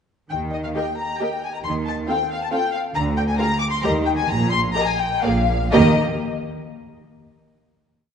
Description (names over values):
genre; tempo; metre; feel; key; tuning
quick classical-period movement for string orchestra; 118-139 BPM; 3/4; rubato; Eb major; A4 = 440 Hz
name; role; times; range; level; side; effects
clear symphonic violin section; melody; 0.3-6.0 s; Eb5 to D6; -23 LUFS; left 5 dB; none
rich symphonic cello section; bass; 0.3-6.0 s; Bb2 to Eb3; -26 LUFS; right 2 dB; none
rich symphonic double bass section; bass; 0.3-6.0 s; Bb1 to Eb2; -26 LUFS; right 2 dB; none
rich symphonic viola section; accompaniment; 0.7-6.0 s; G3 to Ab4; -24 LUFS; right 3 dB; none
warm symphonic violin section; second line; 0.8-6.0 s; A4 to F5; -28 LUFS; left 2 dB; none
room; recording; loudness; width
wet concert hall reverb, RT60 2.0 s; nothing above 10.6 kHz; -19 LUFS; side -7 dB against mid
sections
0.3-5.7 A section; 5.7-7.1 final chord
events
none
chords
0.3 Eb; 1.6 F7/Eb; 3.0 Bb/D; 3.8 N.C.; 4.3 Eb/Bb (rootless); 5.2 Bb5; 5.7 Eb